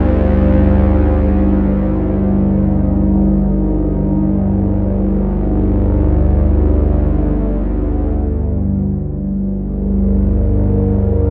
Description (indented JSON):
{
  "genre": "dark ambient drone",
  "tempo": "free time",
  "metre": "none",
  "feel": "none",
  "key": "unclear",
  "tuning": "A4 = 440 Hz",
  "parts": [
    { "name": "dark analog pad", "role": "sustained chords", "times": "0.0-11.3 s", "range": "G3 to D5", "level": "-19 LUFS", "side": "equal", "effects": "chorus" },
    { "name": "bowed-like drone", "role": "drone", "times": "0.0-11.3 s", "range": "G1 to D2", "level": "-17 LUFS", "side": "equal", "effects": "built-in reverb" }
  ],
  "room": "wet cathedral reverb, RT60 6.5 s",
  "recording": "in a vast, echoing space, cassette tape, nothing above 10.6 kHz",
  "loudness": "-15 LUFS",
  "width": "mono",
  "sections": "0.0-8.2 A section; 8.2-11.3 B section",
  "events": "none",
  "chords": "0.0 Cmadd9; 8.2 Gm",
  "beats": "free time"
}